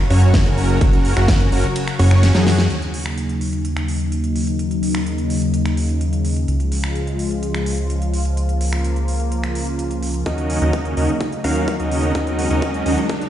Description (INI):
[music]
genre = EDM, festival progressive house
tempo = 127 BPM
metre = 4/4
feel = straight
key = unclear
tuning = A4 = 438 Hz
[part]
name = lush unison pad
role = sustained chords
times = 0.0-13.3 s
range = C#3 to A#5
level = -24 LUFS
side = left 1 dB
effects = chorus, phaser, sidechain pumping
[part]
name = dense compressed supersaw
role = riff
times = 0.1-2.7, 10.3-13.0 s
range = C#4 to E#5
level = -22 LUFS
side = right 1 dB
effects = sidechain pumping, low-pass filter, digital delay
[part]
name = fat analog bass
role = bass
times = 0.1-13.0 s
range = F#1 to F#2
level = -19 LUFS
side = equal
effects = sidechain pumping
[part]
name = big-room dance drum kit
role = drums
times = 0.1-13.3 s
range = finger snaps, hi-hat, ride cymbal, snare drum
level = -27 LUFS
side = equal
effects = none
[part]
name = electronic kick drum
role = drums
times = 0.3-1.4, 10.3-13.2 s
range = none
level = -18 LUFS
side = equal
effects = high-pass filter on kick
[part]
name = riser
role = sound effects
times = 11.3-13.3 s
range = none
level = -27 LUFS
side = right 1 dB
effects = none
[sound]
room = light reverb, digital ambience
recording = played on a big sound system in a bare room, stone room reverb, nothing above 10.9 kHz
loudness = -16 LUFS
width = side -11 dB against mid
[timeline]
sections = 0.0-2.7 A section; 2.7-10.3 B section; 10.3-13.3 C section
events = drop 0.0-2.7; kick drops out 1.8-2.7; drum fill 2.2-2.7; band accent 2.6; filter sweep on analog synth pad 2.7-10.3; build-up 10.3-13.3; riser 11.3-13.3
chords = 0.0 F#; 2.7 D#m7; 6.5 C#; 10.3 D#m7